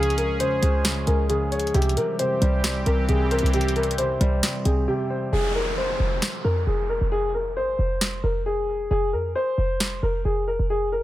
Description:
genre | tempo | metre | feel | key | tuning
hip hop, trap | 134 BPM | 4/4 | half-time | F harmonic minor | A4 = 440 Hz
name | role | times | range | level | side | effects
dark grand piano | melody | 0.0-11.0 s | G4 to C5 | -25 LUFS | left 1 dB | low-pass filter, digital delay
dark baby grand piano | accompaniment | 0.0-5.3 s | C3 to F5 | -28 LUFS | equal | low-pass filter
sweeping resonant pad | sustained chords | 0.0-5.3 s | E3 to Ab4 | -30 LUFS | equal | chorus
short 808-style bass | bass | 0.0-11.0 s | F1 to C3 | -24 LUFS | equal | none
trap drum kit | drums | 0.0-9.9 s | hi-hat, snare drum | -27 LUFS | equal | none
downlifter | sound effects | 5.3-8.9 s | none | -33 LUFS | right 1 dB | none
room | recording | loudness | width
light reverb | none | -21 LUFS | side -15 dB against mid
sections
0.0-5.3 A section; 5.3-11.0 B section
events
break 4.9-5.3, 5.3-11.0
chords
0.0 Db; 1.7 C; 5.3 Fm

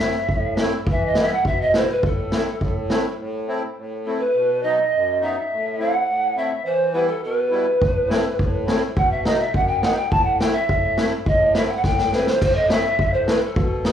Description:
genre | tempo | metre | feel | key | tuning
klezmer | 104 BPM | 2/4 | straight | A dorian sharp4 | A4 = 442 Hz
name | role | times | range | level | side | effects
reedy pan flute | melody | 0.0-13.9 s | A4 to A5 | -20 LUFS | right 1 dB | plate reverb, slapback echo
accordion | accompaniment | 0.0-13.9 s | F#2 to E4 | -25 LUFS | left 1 dB | light tremolo tuning, plate reverb, slapback echo
street-band drum kit | drums | 0.1-3.0, 7.8-13.9 s | crash cymbal, kick drum, snare drum | -22 LUFS | equal | none
room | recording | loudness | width
moderate club reverb, RT60 0.6 s | live gig heard through the venue's PA, club reverb | -18 LUFS | side -9 dB against mid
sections
0.0-3.2 A section; 3.2-12.4 B section; 12.4-13.9 C section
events
pan flute solo 3.2-12.4; drum fill 11.8-12.4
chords
0.0 Am; 0.9 Em; 2.0 Am; 4.4 B; 5.5 Am; 6.7 Em; 7.8 Am; 9.0 B; 10.1 Am

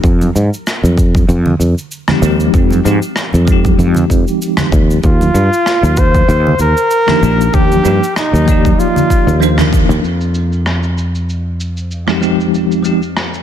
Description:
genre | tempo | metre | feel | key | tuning
sunset chillout | 96 BPM | 4/4 | swing 55% on 16ths | F dorian | A4 = 436 Hz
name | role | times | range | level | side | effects
bell-like tine electric piano | accompaniment | 0.0-13.0 s | F3 to D5 | -16 LUFS | moving between left 4 dB and right 3 dB | fast stereo tremolo, auto-pan, digital delay
sustaining fretless electric bass | bass | 0.0-13.4 s | Bb1 to Ab2 | -13 LUFS | equal | none
cabasa and rim click | drums | 0.0-13.4 s | none | -22 LUFS | equal | low-pass filter on snare, low-pass filter on perc, low-pass filter on room
electronic kick drum | drums | 0.0-9.9 s | none | -13 LUFS | equal | overdrive
congas | percussion | 0.2-9.7 s | none | -21 LUFS | right 4 dB | none
mellow flugelhorn | melody | 5.0-9.7 s | Eb4 to C5 | -15 LUFS | equal | digital delay
room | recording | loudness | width
studio reverb | dense, heavily limited modern master | -10 LUFS | side -10 dB against mid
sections
0.0-10.0 A section; 10.0-13.4 B section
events
band accent 9.6-9.9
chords
0.0 Fm9; 5.0 Ebmaj9; 10.0 Fm9

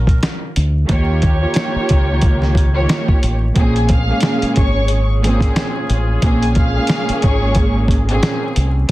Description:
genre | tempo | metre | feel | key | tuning
hip hop, boom-bap hip-hop | 90 BPM | 4/4 | swing 57% on 16ths | Bb dorian | A4 = 441 Hz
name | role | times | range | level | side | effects
clear horn section | stabs | 0.0-8.5 s | Db4 to Db5 | -28 LUFS | left 1 dB | high-pass filter, low-pass filter, tape echo
deep dub fingered electric bass | bass | 0.0-8.8 s | Ab1 to Eb2 | -16 LUFS | equal | none
dusty soul sampler-style drum kit | drums | 0.1-8.9 s | hi-hat, kick drum, snare drum | -16 LUFS | equal | none
finger snap | percussion | 0.2-3.1 s | none | -32 LUFS | left 6 dB | none
dark studio string section | accompaniment | 0.9-8.7 s | Bb2 to Db5 | -19 LUFS | right 1 dB | high-pass filter, low-pass filter
warm studio violin section | melody | 3.8-7.7 s | Ab4 to F6 | -23 LUFS | left 1 dB | high-pass filter, low-pass filter
room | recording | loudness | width
light reverb | dense, heavily limited modern master, vinyl crackle | -13 LUFS | side -17 dB against mid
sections
0.0-3.6 A section; 3.6-8.9 A section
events
break 0.0-0.9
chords
0.0 Db6; 0.9 Eb7; 3.6 Bbm7

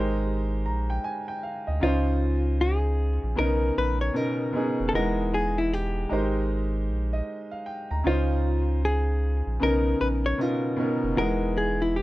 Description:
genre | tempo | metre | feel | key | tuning
lo-fi hip hop | 77 BPM | 4/4 | swing 62% on 16ths | Db lydian | A4 = 441 Hz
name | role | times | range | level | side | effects
hollow-body jazz guitar | melody | 0.0-12.0 s | E4 to Db5 | -29 LUFS | left 2 dB | low-pass filter
clear upright piano | accompaniment | 0.0-12.0 s | Cb3 to Bb5 | -27 LUFS | equal | low-pass filter
warm sub bass | bass | 0.0-12.0 s | E1 to D2 | -26 LUFS | equal | none
room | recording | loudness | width
little or no reverb | rough home demo mix | -23 LUFS | side -17 dB against mid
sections
0.0-12.0 A section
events
none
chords
0.0 Abmaj9; 1.8 Dbmaj9; 3.4 Cbmaj9; 4.9 Emaj9; 6.1 Abmaj9; 8.0 Dbmaj9; 9.6 Cbmaj9; 11.2 Emaj9

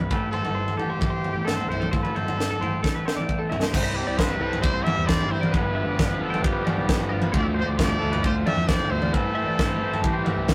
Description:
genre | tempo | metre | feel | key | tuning
math rock and midwest emo | 133 BPM | 4/4 | straight | A minor | A4 = 435 Hz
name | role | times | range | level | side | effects
clean electric guitar | accompaniment | 0.0-10.5 s | E2 to G4 | -39 LUFS | equal | none
twelve-string electric guitar | arpeggios | 0.0-10.5 s | G4 to A5 | -34 LUFS | equal | none
fuzz fingered electric bass | bass | 0.0-10.5 s | G1 to F2 | -32 LUFS | equal | overdrive
crisp fusion drum kit | drums | 0.0-10.5 s | crash cymbal, kick drum, snare drum, toms | -27 LUFS | equal | none
bright trumpet | melody | 0.1-10.5 s | G4 to E5 | -32 LUFS | equal | none
raw garage guitar | riff | 3.7-10.5 s | G2 to E4 | -33 LUFS | equal | overdrive
room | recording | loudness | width
moderate studio reverb, RT60 0.6 s | rough rehearsal-room recording, tube saturation | -24 LUFS | mono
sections
0.0-3.7 A section; 3.7-10.5 B section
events
drum fill 2.8-3.7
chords
0.1 Am7; 3.7 Cmaj7; 5.5 G7; 7.3 Dm7; 9.1 Am7

